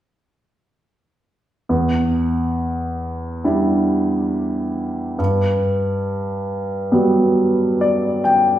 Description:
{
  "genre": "folk",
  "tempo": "69 BPM",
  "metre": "4/4",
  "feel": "straight",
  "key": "E minor",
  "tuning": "A4 = 440 Hz",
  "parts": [
    { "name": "warm upright piano", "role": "accompaniment", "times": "1.7-8.6 s", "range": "E2 to G5", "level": "-16 LUFS", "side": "equal", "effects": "none" }
  ],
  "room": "wet recital hall reverb, RT60 1.5 s",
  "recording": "recorded in a church or concert hall",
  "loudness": "-17 LUFS",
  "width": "side -12 dB against mid",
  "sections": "1.7-8.6 A section",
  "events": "none",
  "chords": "1.7 Em7; 5.2 Gmaj7"
}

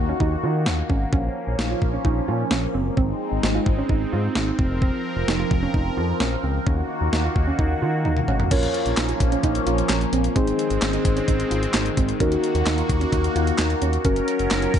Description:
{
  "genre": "synth-pop",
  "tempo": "130 BPM",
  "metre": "4/4",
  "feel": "straight",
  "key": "Bb minor",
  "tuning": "A4 = 440 Hz",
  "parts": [
    { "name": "phased analog pad", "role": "sustained chords", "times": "0.0-14.8 s", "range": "Eb3 to Bb4", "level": "-26 LUFS", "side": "equal", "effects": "phaser, chorus" },
    { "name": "soft round pluck", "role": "arpeggios", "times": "0.0-14.8 s", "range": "C4 to F4", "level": "-29 LUFS", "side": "right 6 dB", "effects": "chorus, ping-pong delay" },
    { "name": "smooth gliding synth bass", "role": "bass", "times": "0.0-14.8 s", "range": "F1 to Eb3", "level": "-25 LUFS", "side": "equal", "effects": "none" },
    { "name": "clean 12-bit digital drum machine", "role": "drums", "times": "0.2-14.8 s", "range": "crash cymbal, handclaps, hi-hat, kick drum, snare drum, toms", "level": "-24 LUFS", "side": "equal", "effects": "none" },
    { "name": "muted felt-like synth keys", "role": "accompaniment", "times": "8.5-14.8 s", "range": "Db4 to Db5", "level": "-25 LUFS", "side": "left 2 dB", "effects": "chorus" }
  ],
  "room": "light reverb, digital ambience",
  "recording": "nothing above 10.8 kHz",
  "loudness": "-19 LUFS",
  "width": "side -9 dB against mid",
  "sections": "0.0-8.5 A section; 8.5-14.8 B section",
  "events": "drum fill 8.0-8.5",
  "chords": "0.0 Ebm; 1.1 Bbm; 3.0 Ab; 4.6 Fsus4; 6.7 Ebm; 8.5 Bbm; 10.4 Ab; 12.2 Ebm; 14.0 Gb"
}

